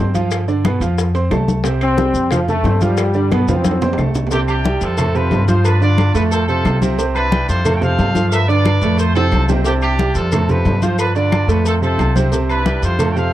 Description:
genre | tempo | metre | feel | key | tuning
latin, salsa | 180 BPM | 4/4 | straight | C major | A4 = 440 Hz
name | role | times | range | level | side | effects
clear grand piano | accompaniment | 0.0-13.3 s | A2 to C6 | -20 LUFS | right 4 dB | none
upright bass | bass | 0.0-13.3 s | C2 to G2 | -17 LUFS | equal | none
maracas | percussion | 0.1-13.3 s | none | -33 LUFS | left 8 dB | none
bongos and cowbell | percussion | 0.2-13.2 s | none | -28 LUFS | left 5 dB | none
congas | percussion | 0.2-13.3 s | none | -20 LUFS | left 2 dB | none
timbales and agogo bells | percussion | 0.2-13.2 s | none | -27 LUFS | right 5 dB | none
claves | percussion | 0.3-13.2 s | none | -32 LUFS | left 8 dB | none
bright trombone section | melody | 1.8-4.1 s | F3 to C4 | -18 LUFS | left 2 dB | slapback echo
brilliant horn section | melody | 4.3-13.3 s | C4 to G5 | -20 LUFS | equal | none
room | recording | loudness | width
small room ambience | dry, close 1970s-style studio recording | -13 LUFS | side -13 dB against mid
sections
0.0-4.3 A section; 4.3-13.3 B section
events
drum fill 3.3-4.3, 9.2-9.7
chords
0.3 G7; 1.0 F; 1.6 C5; 2.3 F; 3.0 G7; 3.6 F; 4.3 Cadd9; 5.0 F; 5.7 G7; 6.3 F; 7.0 Cadd9; 7.7 F; 8.3 G7; 9.0 F; 9.7 Cadd9; 10.3 F; 11.0 G7; 11.7 F; 12.3 Cadd9

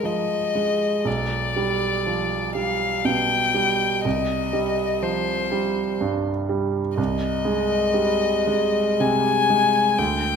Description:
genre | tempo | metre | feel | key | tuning
classical, slow romantic movement for piano trio | 61 BPM | 3/4 | rubato | C minor | A4 = 440 Hz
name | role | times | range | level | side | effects
rich violin | melody | 0.0-10.4 s | C5 to Ab5 | -22 LUFS | left 7 dB | none
bright concert grand piano | accompaniment | 0.0-10.4 s | B1 to Ab3 | -23 LUFS | right 4 dB | none
room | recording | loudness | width
wet recital hall reverb, RT60 1.3 s | none | -20 LUFS | side -6 dB against mid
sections
0.0-10.4 A section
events
none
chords
0.0 Fm/Ab; 1.1 G7/B; 4.1 Cm; 7.0 Ab/C

